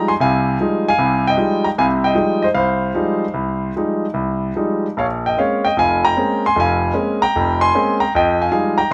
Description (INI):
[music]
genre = solo jazz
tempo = 153 BPM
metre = 4/4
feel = swing 67% on 8ths, rubato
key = F minor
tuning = A4 = 442 Hz
[part]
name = warm concert grand piano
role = solo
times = 0.0-8.9 s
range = F1 to C6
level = -17 LUFS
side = equal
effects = none
[sound]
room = moderate studio reverb, RT60 0.7 s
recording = none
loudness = -18 LUFS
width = mono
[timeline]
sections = 0.0-8.9 A section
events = none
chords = 0.0 Fm9; 5.0 Bbm9; 8.1 Fm9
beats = | 0.24 0.63 1.01 1.40 | 1.79 2.18 2.57 2.97 | 3.37 3.76 4.16 4.57 | 4.98 5.38 5.78 6.17 | 6.57 6.96 7.34 7.73 | 8.12 8.52 8.91